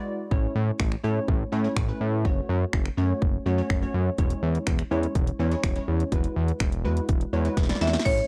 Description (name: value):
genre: dance-pop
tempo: 124 BPM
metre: 4/4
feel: straight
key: unclear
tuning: A4 = 437 Hz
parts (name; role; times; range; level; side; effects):
- glassy wavetable pluck; accompaniment; 0.0-8.3 s; G#3 to D5; -34 LUFS; equal; chorus, sidechain pumping
- fat analog bass; bass; 0.3-8.2 s; E1 to A2; -28 LUFS; equal; sidechain pumping
- house drum kit; drums; 0.3-8.3 s; crash cymbal, finger snaps, hi-hat, kick drum, snare drum; -28 LUFS; equal; none
- marimba with hard mallets; melody; 7.8-8.3 s; C#5 to E5; -27 LUFS; equal; slapback echo
- granular cloud pad; sustained chords; 8.3 s; E3 to C#4; -50 LUFS; equal; none
room: little or no reverb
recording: dry, close 1970s-style studio recording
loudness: -25 LUFS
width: mono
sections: 0.0-8.1 A section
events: drum fill 7.6-8.1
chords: 0.3 A; 2.2 F#m; 4.2 C#m/E; 6.1 Eadd9